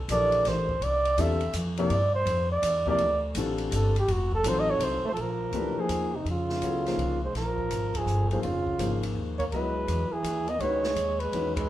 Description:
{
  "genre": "modal jazz",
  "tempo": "165 BPM",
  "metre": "3/4",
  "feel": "swing 65% on 8ths",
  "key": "G dorian",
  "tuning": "A4 = 440 Hz",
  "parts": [
    { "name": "upright bass", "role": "bass", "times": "0.0-11.7 s", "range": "F1 to G2", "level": "-30 LUFS", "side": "equal", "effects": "none" },
    { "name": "trumpet with bucket mute", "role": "melody", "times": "0.1-11.7 s", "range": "Eb4 to E5", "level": "-28 LUFS", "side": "right 1 dB", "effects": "none" },
    { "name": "warm grand piano", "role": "accompaniment", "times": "0.1-11.6 s", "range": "C3 to Eb5", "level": "-32 LUFS", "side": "left 4 dB", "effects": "none" },
    { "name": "open jazz drum kit", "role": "drums", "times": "0.1-11.6 s", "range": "hi-hat, kick drum, ride cymbal, snare drum", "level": "-38 LUFS", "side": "left 1 dB", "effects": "none" },
    { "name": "warm trombone", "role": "second line", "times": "5.0-11.7 s", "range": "C3 to Cb4", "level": "-34 LUFS", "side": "right 4 dB", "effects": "none" }
  ],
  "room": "wet large studio reverb, RT60 0.8 s",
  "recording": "band playing live in one room, lossy compression artefacts",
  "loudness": "-25 LUFS",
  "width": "side -13 dB against mid",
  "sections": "0.0-5.2 A section; 5.2-11.7 B section",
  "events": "muted trumpet solo 0.0-5.2; band accent 7.9, 11.5",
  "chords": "0.0 G9sus4; 4.1 F7b9; 5.2 Bbm9; 9.5 Dbm9"
}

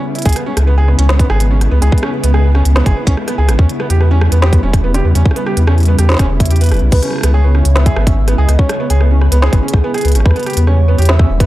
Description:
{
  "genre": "IDM",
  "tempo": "144 BPM",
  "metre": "4/4",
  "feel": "straight",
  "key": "C# minor",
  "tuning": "A4 = 440 Hz",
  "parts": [
    { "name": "soft string machine", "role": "sustained chords", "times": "0.0-11.5 s", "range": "C#3 to E4", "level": "-21 LUFS", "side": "left 1 dB", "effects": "ensemble chorus, vintage 12-bit sampler grit, sidechain pumping" },
    { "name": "felt-muted upright piano", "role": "arpeggios", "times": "0.2-11.5 s", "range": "B3 to B4", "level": "-21 LUFS", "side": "right 3 dB", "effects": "vintage 12-bit sampler grit, analog delay" },
    { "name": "organic electronic drum kit", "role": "drums", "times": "0.2-11.5 s", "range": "crash cymbal, hi-hat, rim click, snare drum", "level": "-21 LUFS", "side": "equal", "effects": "overdrive" },
    { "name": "warm sub bass", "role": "bass", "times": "0.3-11.5 s", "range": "E1 to E2", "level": "-10 LUFS", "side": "equal", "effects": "none" },
    { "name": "electronic kick drum", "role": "drums", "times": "0.3-11.5 s", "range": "none", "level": "-12 LUFS", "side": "equal", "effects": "overdrive" },
    { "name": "soft struck synth lead", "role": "melody", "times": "6.9-11.5 s", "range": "G#4 to E5", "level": "-22 LUFS", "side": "equal", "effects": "chorus, analog delay" }
  ],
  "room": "digital ambience",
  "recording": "dry, gritty hardware recording, transformer saturation",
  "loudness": "-10 LUFS",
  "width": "side -16 dB against mid",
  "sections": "0.0-11.5 A section",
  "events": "none",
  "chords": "0.3 C#m7; 3.6 Em6; 6.9 C#m7; 10.3 Em6"
}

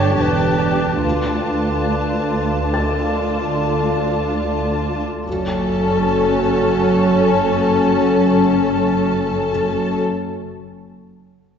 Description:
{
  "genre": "cinematic, suspense film score",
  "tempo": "71 BPM",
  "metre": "5/4",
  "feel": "straight",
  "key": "F# phrygian",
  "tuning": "A4 = 440 Hz",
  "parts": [
    { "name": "warm studio violin section", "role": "melody", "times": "0.0-10.0 s", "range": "A5", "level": "-27 LUFS", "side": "left 5 dB", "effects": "none" },
    { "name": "mellow clarinet", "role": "second line", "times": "0.0-10.0 s", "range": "F#4 to C#5", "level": "-25 LUFS", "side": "right 3 dB", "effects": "none" },
    { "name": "rich studio violin section", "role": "second line", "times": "0.0-10.0 s", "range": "F4 to A4", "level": "-23 LUFS", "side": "left 3 dB", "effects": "none" },
    { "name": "warm studio viola section", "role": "accompaniment", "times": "0.0-10.0 s", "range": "C#4 to D4", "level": "-22 LUFS", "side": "left 1 dB", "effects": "none" },
    { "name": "deep dark ambient pad", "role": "sustained chords", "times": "0.0-10.0 s", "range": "D4 to G5", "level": "-26 LUFS", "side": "left 1 dB", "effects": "chorus, built-in reverb" },
    { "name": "rich studio cello section", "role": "bass", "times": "0.0-10.0 s", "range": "D2 to G2", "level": "-22 LUFS", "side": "right 2 dB", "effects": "none" },
    { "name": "rich studio double bass section", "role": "bass", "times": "0.0-10.0 s", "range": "E1 to D2", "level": "-25 LUFS", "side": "right 2 dB", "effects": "none" },
    { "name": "felt-muted upright piano", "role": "texture", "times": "0.0-5.3 s", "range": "A5 to A6", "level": "-32 LUFS", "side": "left 2 dB", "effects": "none" }
  ],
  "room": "wet concert hall reverb, RT60 1.9 s",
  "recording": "heard from further back in the room, nothing above 7.7 kHz",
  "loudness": "-15 LUFS",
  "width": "side -7 dB against mid",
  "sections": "0.0-5.3 A section; 5.3-9.5 B section",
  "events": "none",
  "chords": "0.0 Gadd9; 1.0 Dm; 5.3 F#m"
}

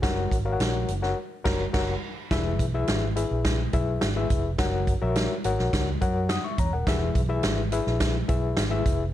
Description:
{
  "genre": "uptempo 1960s-style soul",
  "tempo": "105 BPM",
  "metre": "4/4",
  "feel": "straight",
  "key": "unclear",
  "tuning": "A4 = 441 Hz",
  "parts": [
    { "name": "overdriven reed electric piano", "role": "accompaniment", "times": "0.0-9.0 s", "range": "E3 to D#6", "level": "-29 LUFS", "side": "left 4 dB", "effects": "fast tremolo" },
    { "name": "vintage muted fingered electric bass", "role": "bass", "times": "0.0-9.1 s", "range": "D#1 to F#2", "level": "-28 LUFS", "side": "right 1 dB", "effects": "none" },
    { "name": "swinging big-band drum kit", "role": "drums", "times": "0.0-9.0 s", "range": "crash cymbal, hi-hat, kick drum, snare drum", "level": "-27 LUFS", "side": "right 1 dB", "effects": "none" }
  ],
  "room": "light reverb",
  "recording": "none",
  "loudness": "-23 LUFS",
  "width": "side -12 dB against mid",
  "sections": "0.0-2.3 A section; 2.3-9.1 B section",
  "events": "band accent 1.2-2.3",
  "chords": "0.0 F#; 2.3 E; 4.6 F#; 6.9 E"
}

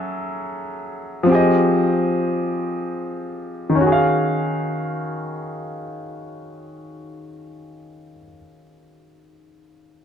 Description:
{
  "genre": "R&B",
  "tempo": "free time",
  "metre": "none",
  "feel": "none",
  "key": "Eb minor",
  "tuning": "A4 = 441 Hz",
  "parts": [
    { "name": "warm grand piano", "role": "solo", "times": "0.0-10.0 s", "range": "Eb3 to F5", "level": "-20 LUFS", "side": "left 1 dB", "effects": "low-pass filter" }
  ],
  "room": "light reverb",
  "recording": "dark, warm production",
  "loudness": "-18 LUFS",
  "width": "side -8 dB against mid",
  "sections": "0.0-3.8 A section; 3.8-9.2 B section",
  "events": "slowing down 0.0-3.8; filter sweep on grand piano 0.0-3.8",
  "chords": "0.0 Gbm9; 1.3 Fm9; 3.8 Ebm11"
}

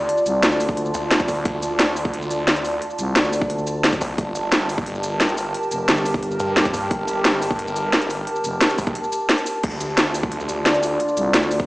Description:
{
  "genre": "dark technical drum and bass",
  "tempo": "176 BPM",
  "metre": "4/4",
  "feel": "straight",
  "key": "D minor",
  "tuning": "A4 = 441 Hz",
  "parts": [
    { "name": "snarling distorted saw bass", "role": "bass", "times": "0.0-11.0 s", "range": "G1 to G2", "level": "-27 LUFS", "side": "equal", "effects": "distortion" },
    { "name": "warbly tape-like pad", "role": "texture", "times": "0.0-11.7 s", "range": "F4 to A5", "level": "-24 LUFS", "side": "equal", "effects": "chorus, built-in reverb, sidechain pumping" },
    { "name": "drum and bass drum kit", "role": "drums", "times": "0.1-11.6 s", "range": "crash cymbal, hi-hat, shaker, snare drum", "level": "-19 LUFS", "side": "equal", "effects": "none" },
    { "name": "growling FM bass", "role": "bass", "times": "0.3-0.9, 3.0-6.4, 8.4-8.6, 11.2-11.7 s", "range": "F1 to D2", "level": "-25 LUFS", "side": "equal", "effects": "none" },
    { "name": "electronic kick drum", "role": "drums", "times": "0.7-11.7 s", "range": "none", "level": "-24 LUFS", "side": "equal", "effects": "none" },
    { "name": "dark analog pad", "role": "sustained chords", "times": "10.1-11.7 s", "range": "D4 to D5", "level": "-26 LUFS", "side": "equal", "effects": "chorus, phaser, sidechain pumping" }
  ],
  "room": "moderate digital room reverb, RT60 1.1 s",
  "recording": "played on a big sound system in a bare room, stone room reverb, small speaker sound",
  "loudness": "-18 LUFS",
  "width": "side -20 dB against mid",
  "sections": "0.0-11.7 A section",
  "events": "none",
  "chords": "0.0 Dm; 4.2 Gmadd9; 9.6 Dm"
}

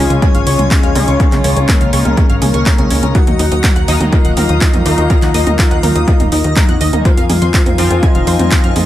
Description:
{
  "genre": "melodic techno",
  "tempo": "123 BPM",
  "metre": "4/4",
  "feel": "straight",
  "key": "Eb dorian",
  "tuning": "A4 = 440 Hz",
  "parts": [
    { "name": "soft octave-layered synth lead", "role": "melody", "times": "0.0-8.9 s", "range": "Bb3 to Gb4", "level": "-20 LUFS", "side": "left 1 dB", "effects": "chorus, sidechain pumping, tape echo" },
    { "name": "airy dreamy lead", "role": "second line", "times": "0.0-8.9 s", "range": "Bb4 to Gb5", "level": "-25 LUFS", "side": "equal", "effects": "chorus, sidechain pumping, tape echo" },
    { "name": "dark chamber string section", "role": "sustained chords", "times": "0.0-8.9 s", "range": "Gb3 to Bb5", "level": "-25 LUFS", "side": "left 2 dB", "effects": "sidechain pumping" },
    { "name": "tight sequenced synth", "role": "arpeggios", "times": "0.0-8.8 s", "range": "C4 to Bb6", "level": "-22 LUFS", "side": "equal", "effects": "chorus, sidechain pumping, dub echo" },
    { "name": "sync-sweep polysynth", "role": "stabs", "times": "0.0-8.7 s", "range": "Db3 to F4", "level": "-20 LUFS", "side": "left 3 dB", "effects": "chorus, sidechain pumping, tape echo" },
    { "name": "plucky analog bass", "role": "bass", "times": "0.0-8.9 s", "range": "Eb1 to Gb2", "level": "-15 LUFS", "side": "equal", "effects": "sidechain pumping" },
    { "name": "analog drone", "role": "drone", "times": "0.4-8.9 s", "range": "Eb3 to Bb3", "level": "-29 LUFS", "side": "equal", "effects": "none" },
    { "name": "techno drum kit", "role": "drums", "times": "0.1-8.9 s", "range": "handclaps, hi-hat, toms", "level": "-19 LUFS", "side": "right 2 dB", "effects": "sidechain pumping on hats, studio reverb, sidechain pumping on cymbals, sidechain pumping on toms, tape echo" },
    { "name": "electronic kick drum", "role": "drums", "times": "0.2-8.6 s", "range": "none", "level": "-12 LUFS", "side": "equal", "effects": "studio reverb" }
  ],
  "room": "digital ambience",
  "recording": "echo-heavy mix",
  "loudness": "-9 LUFS",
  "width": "side -13 dB against mid",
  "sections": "0.0-8.9 A section",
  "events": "none",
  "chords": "0.0 Db; 3.1 Ebm; 7.1 Fm"
}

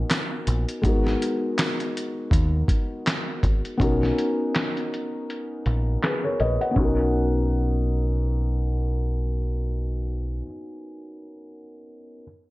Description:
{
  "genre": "lo-fi hip hop",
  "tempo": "81 BPM",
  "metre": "4/4",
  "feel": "swing 57% on 16ths",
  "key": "B major",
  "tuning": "A4 = 440 Hz",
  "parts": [
    { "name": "felt-muted upright piano", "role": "accompaniment", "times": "0.0-12.2 s", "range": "G#3 to F#5", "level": "-27 LUFS", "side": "left 1 dB", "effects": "cassette tape" },
    { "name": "deep dub picked electric bass", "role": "bass", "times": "0.0-10.4 s", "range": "G#1 to D#2", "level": "-24 LUFS", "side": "equal", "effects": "none" },
    { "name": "dusty soul sampler-style drum kit", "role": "drums", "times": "0.1-7.0 s", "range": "handclaps, hi-hat, kick drum, snare drum", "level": "-24 LUFS", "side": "equal", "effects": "vintage 12-bit sampler grit" }
  ],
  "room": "digital ambience",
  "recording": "low-pass filter",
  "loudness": "-22 LUFS",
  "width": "side -19 dB against mid",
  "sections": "0.8-6.8 A section; 6.8-9.7 B section",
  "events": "filter sweep 0.8-6.8; kick muted 5.3-6.8",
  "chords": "0.0 Bmaj9; 0.8 G#m9; 3.8 Bmaj9"
}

